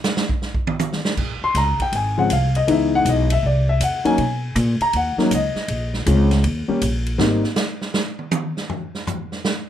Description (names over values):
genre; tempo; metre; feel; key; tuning
jazz piano trio; 160 BPM; 4/4; swing 66% on 8ths; Bb minor; A4 = 440 Hz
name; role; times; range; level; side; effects
swinging big-band drum kit; drums; 0.0-9.6 s; crash cymbal, hi-hat, kick drum, ride cymbal, snare drum, toms; -24 LUFS; right 2 dB; none
upright bass; bass; 1.2-7.4 s; Ab1 to B2; -20 LUFS; equal; none
dark concert grand piano; melody; 1.4-7.4 s; Db3 to C6; -19 LUFS; left 2 dB; none
room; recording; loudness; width
light reverb; none; -18 LUFS; side -10 dB against mid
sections
0.0-1.2 A section; 1.2-9.7 A section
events
grand piano solo 0.0-9.7; drum solo 0.0-1.2, 7.2-9.7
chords
0.0 N.C.; 1.2 Bbm9; 2.7 Dbm7; 3.4 C; 4.2 Bmaj9; 5.7 Bbm7; 6.4 Eb; 7.2 N.C.